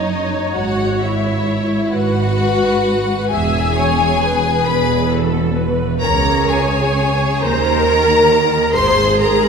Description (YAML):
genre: classical, slow romantic movement for string orchestra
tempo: 44 BPM (dotted quarters)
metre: 6/8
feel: rubato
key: E major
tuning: A4 = 440 Hz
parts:
  - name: rich chamber violin section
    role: melody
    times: 0.0-9.5 s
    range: D#5 to C6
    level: -20 LUFS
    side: left 4 dB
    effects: none
  - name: rich chamber violin section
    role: second line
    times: 0.0-9.5 s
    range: D#4 to C5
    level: -18 LUFS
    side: left 2 dB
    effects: none
  - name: rich symphonic viola section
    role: accompaniment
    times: 0.0-9.5 s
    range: G#4 to E5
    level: -21 LUFS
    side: right 2 dB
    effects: none
  - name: rich chamber double bass section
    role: bass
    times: 0.0-9.5 s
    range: E1 to Eb2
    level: -21 LUFS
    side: right 4 dB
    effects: none
  - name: warm chamber cello section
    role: bass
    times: 0.0-9.5 s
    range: E2 to Eb3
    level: -20 LUFS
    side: right 1 dB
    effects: none
room: wet concert hall reverb, RT60 1.8 s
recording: heard from further back in the room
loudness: -13 LUFS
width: side -6 dB against mid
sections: 0.0-9.5 A section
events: none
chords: 0.0 F#5; 0.6 E/G#; 3.3 E; 6.0 Db5; 7.4 Eb5; 8.8 Ab